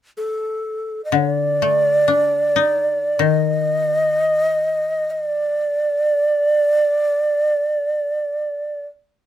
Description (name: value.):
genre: japanese traditional, Japanese chamber music.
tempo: free time.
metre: none.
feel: none.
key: unclear.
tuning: A4 = 438 Hz.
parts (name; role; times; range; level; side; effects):
breathy long shakuhachi; melody; 0.2-8.9 s; A4 to Eb5; -17 LUFS; right 1 dB; none.
koto; accompaniment; 1.1-6.0 s; D3 to Eb4; -21 LUFS; left 9 dB; none.
room: light reverb.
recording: close, detailed microphones.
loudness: -16 LUFS.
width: side -11 dB against mid.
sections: 0.0-9.3 A section.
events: none.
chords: none.